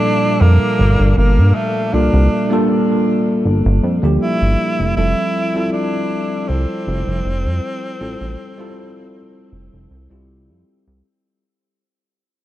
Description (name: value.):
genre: vaporwave.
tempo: 79 BPM.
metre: 4/4.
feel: swing 53% on 16ths.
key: unclear.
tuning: A4 = 444 Hz.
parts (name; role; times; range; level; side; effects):
warm tenor saxophone; melody; 0.0-10.3 s; A3 to E4; -21 LUFS; equal; tape echo.
bell-like tine electric piano; accompaniment; 0.0-11.1 s; Bb2 to A4; -18 LUFS; equal; wide subtle chorus, tape echo.
chorused synth bass; bass; 0.4-11.0 s; F1 to G2; -14 LUFS; equal; none.
room: light reverb, small room ambience.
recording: echo-heavy mix, cassette tape.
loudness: -14 LUFS.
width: side -14 dB against mid.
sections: 0.0-11.0 A section.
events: fade-out 2.9-11.0.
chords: 0.0 Gm9; 5.0 Fmaj9.